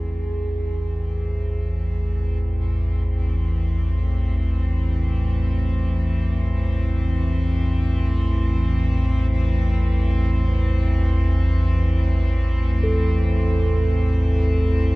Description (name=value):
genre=dark ambient drone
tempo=free time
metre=none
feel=none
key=A harmonic minor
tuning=A4 = 440 Hz
part: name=warm studio cello section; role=sustained chords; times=0.0-15.0 s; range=A2 to C4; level=-28 LUFS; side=equal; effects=shimmer reverb
part: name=deep rumbling drone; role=drone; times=0.0-15.0 s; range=A1 to E2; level=-19 LUFS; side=equal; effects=built-in reverb, wide subtle chorus
part: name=bronze singing bowl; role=texture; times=0.0-15.0 s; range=G#4 to A4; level=-32 LUFS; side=right 3 dB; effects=shimmer reverb
room=moderate huge ambient reverb, RT60 7.0 s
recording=worn, warbling old tape, cassette tape, warbly pitch drift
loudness=-19 LUFS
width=side -22 dB against mid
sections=0.0-15.0 A section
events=fade-in on cello section 0.0-15.0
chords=0.0 Am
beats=free time